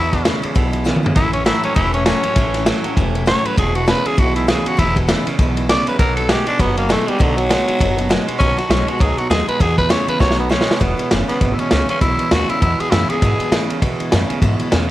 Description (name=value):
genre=rockabilly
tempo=199 BPM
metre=4/4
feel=swing 58% on 8ths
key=E major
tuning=A4 = 440 Hz
part: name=raspy tenor saxophone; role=melody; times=0.0-13.7 s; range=D3 to D5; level=-20 LUFS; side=equal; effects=analog delay
part: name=picked steel-string acoustic guitar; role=accompaniment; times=0.0-14.9 s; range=E2 to G#4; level=-26 LUFS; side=left 4 dB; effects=none
part: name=twangy electric guitar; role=riff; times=0.0-14.9 s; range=E2 to G#3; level=-23 LUFS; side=right 4 dB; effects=none
part: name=upright bass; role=bass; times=0.0-14.9 s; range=E1 to B2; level=-21 LUFS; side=equal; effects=none
part: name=vintage drum kit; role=drums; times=0.1-14.8 s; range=kick drum, ride cymbal, snare drum, toms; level=-18 LUFS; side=equal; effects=none
room=light reverb, small room ambience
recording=none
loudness=-14 LUFS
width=side -15 dB against mid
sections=0.0-10.8 A section; 10.8-14.9 B section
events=tenor saxophone solo 0.0-10.8; drum fill 0.9-1.2, 10.2-10.8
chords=0.0 E; 1.2 A; 3.6 E; 6.0 B; 9.6 E; 10.2 B; 10.8 E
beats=0.26 0.56 0.86 | 1.16 1.46 1.77 2.07 | 2.37 2.67 2.97 3.27 | 3.58 3.88 4.18 4.48 | 4.78 5.08 5.39 5.69 | 5.99 6.29 6.59 6.89 | 7.20 7.50 7.80 8.10 | 8.40 8.70 9.00 9.30 | 9.61 9.91 10.21 10.51 | 10.81 11.11 11.41 11.71 | 12.01 12.31 12.61 12.91 | 13.21 13.51 13.81 14.11 | 14.41 14.71